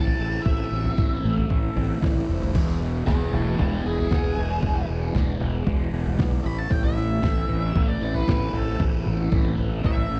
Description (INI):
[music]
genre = psychedelic rock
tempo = 115 BPM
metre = 4/4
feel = straight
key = unclear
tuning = A4 = 441 Hz
[part]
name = octave-fuzz lead guitar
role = melody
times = 0.0-10.2 s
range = D4 to B5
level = -34 LUFS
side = equal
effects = distortion, tape echo
[part]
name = tonewheel organ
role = sustained chords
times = 0.0-10.2 s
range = E3 to E5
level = -38 LUFS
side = equal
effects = none
[part]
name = fuzz guitar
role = riff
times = 0.0-10.2 s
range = E2 to E4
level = -31 LUFS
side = equal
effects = distortion, phaser
[part]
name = fuzz fingered electric bass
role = bass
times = 0.0-10.2 s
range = E1 to B1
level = -29 LUFS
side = equal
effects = overdrive
[part]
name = trip hop sampler-style drum kit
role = drums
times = 0.1-10.1 s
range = crash cymbal, kick drum, snare drum, toms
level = -27 LUFS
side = equal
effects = none
[part]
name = metallic inharmonic drone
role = drone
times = 4.6-10.2 s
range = none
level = barely audible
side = none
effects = none
[sound]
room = little or no reverb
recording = dry, close 1970s-style studio recording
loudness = -24 LUFS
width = mono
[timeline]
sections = 0.0-2.5 A section; 2.5-10.2 B section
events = drum fill 2.0-2.5; lead electric guitar solo 2.5-10.2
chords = 0.0 Am; 2.5 E; 6.5 Am